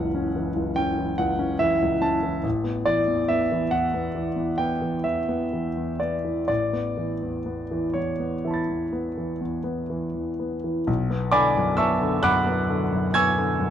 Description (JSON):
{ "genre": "classical, impressionist solo piano", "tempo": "40-48 BPM (dotted quarters)", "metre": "9/8", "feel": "rubato", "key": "B minor", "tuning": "A4 = 440 Hz", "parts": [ { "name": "clear grand piano", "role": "solo", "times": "0.0-13.7 s", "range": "F#1 to A6", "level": "-22 LUFS", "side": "equal", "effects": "none" } ], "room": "moderate stone room reverb, RT60 1.4 s", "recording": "dark, warm production", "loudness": "-22 LUFS", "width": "side -9 dB against mid", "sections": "0.0-10.9 A section; 10.9-13.7 A section", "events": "none", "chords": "0.0 F#m7; 2.4 Asus2; 10.9 Bm6" }